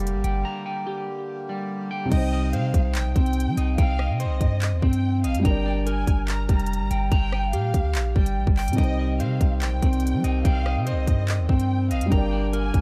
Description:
hip hop, drill; 144 BPM; 4/4; half-time; C minor; A4 = 439 Hz
dark concert grand piano; accompaniment; 0.0-12.8 s; C3 to D5; -33 LUFS; equal
accordion; sustained chords; 0.0-2.1, 8.8-12.8 s; D3 to G4; -39 LUFS; equal
electric guitar at the edge of break-up; arpeggios; 0.0-12.8 s; G3 to Bb5; -32 LUFS; equal; delay
long sustained 808-style bass; bass; 0.0-12.8 s; F1 to G3; -27 LUFS; equal
drill drum kit; drums; 0.0-12.8 s; crash cymbal, handclaps, hi-hat, kick drum, rim click; -25 LUFS; equal
warm symphonic violin section; second line; 2.1-12.8 s; Eb5 to Bb5; -36 LUFS; equal; delay
small room ambience; dark, warm production; -23 LUFS; mono
0.0-2.1 A section; 2.1-12.8 B section
break 0.5-2.1
0.0 Gm; 2.1 Cm; 5.5 Gm; 8.8 Cm; 12.1 Gm
0.03 | 0.45 0.87 1.28 1.70 | 2.12 2.53 2.95 3.37 | 3.78 4.20 4.62 5.03 | 5.45 5.87 6.28 6.70 | 7.12 7.53 7.95 8.37 | 8.78 9.20 9.62 10.03 | 10.45 10.87 11.28 11.70 | 12.12 12.53

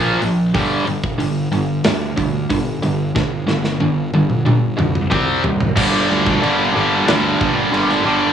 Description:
hard rock; 92 BPM; 4/4; straight; G minor; A4 = 440 Hz
distorted electric guitar; riff; 0.0-8.3 s; G2 to C4; -17 LUFS; right 1 dB; overdrive, cassette tape
fuzz fingered electric bass; bass; 0.0-8.3 s; F#1 to D2; -24 LUFS; right 1 dB; overdrive
big rock drum kit; drums; 0.2-8.0 s; crash cymbal, hi-hat, kick drum, snare drum, toms; -21 LUFS; equal; cassette tape
high-gain distorted guitar; riff; 5.8-8.3 s; G2 to D4; -21 LUFS; right 1 dB; distortion, cassette tape
light reverb; home recording on cassette, studio reverb; -15 LUFS; side -8 dB against mid
0.0-5.8 A section; 5.8-8.3 B section
drum fill 3.2-5.8
0.0 Bb5; 0.5 G5; 5.1 C5; 5.8 Gm
| 0.54 1.20 1.85 2.51 | 3.16 3.82 4.47 5.12 | 5.78 6.43 7.08 7.74

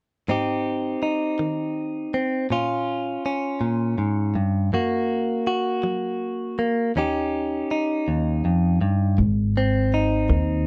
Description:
folk; 54 BPM (dotted quarters); 6/8; straight; Ab major; A4 = 439 Hz
direct-recorded clean electric guitar; accompaniment; 0.3-10.7 s; Eb2 to G4; -24 LUFS; equal
upright bass; bass; 9.2-10.7 s; Ab1 to Eb2; -23 LUFS; equal
moderate studio reverb, RT60 0.5 s; dark, warm production; -24 LUFS; mono
0.3-9.2 A section; 9.2-10.7 B section
0.3 Abmaj7; 2.5 Bbm7; 4.7 Gb; 7.0 Eb7; 9.2 Ab
| 0.28 1.39 | 2.50 3.62 | 4.73 5.84 | 6.96 8.07 | 9.18 10.29

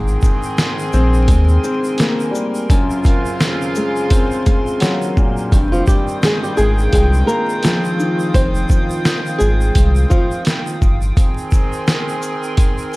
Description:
hip hop, boom-bap hip-hop; 85 BPM; 4/4; swing 58% on 16ths; F minor; A4 = 440 Hz
warm upright piano; accompaniment; 0.0-11.2 s; Gb2 to G5; -21 LUFS; left 2 dB; high-pass filter, low-pass filter
hollow soft pad; sustained chords; 0.0-13.0 s; F4 to Eb6; -29 LUFS; right 1 dB; chorus, high-pass filter, low-pass filter
warm horn section; stabs; 0.0-13.0 s; Db3 to G5; -24 LUFS; right 1 dB; high-pass filter, low-pass filter, slapback echo
soft dub sub bass; bass; 0.0-11.1 s; F1 to Eb2; -14 LUFS; equal
tube shaker; percussion; 0.1-12.9 s; -38 LUFS; right 4 dB
trip hop sampler-style drum kit; drums; 0.2-13.0 s; hi-hat, kick drum, shaker, snare drum; -15 LUFS; equal
flamenco guitar; melody; 5.7-10.4 s; F3 to C5; -20 LUFS; equal; high-pass filter, low-pass filter, slapback echo
small room ambience; vinyl crackle; -13 LUFS; side -21 dB against mid
0.0-13.0 A section
break 11.2-13.0
0.0 Abmaj9; 2.7 Gbmaj9#11; 5.5 Fm9; 11.2 Abmaj9
0.58 1.29 1.99 | 2.70 3.40 4.11 4.82 | 5.52 6.23 6.93 7.64 | 8.35 9.05 9.76 10.46 | 11.17 11.88 12.58

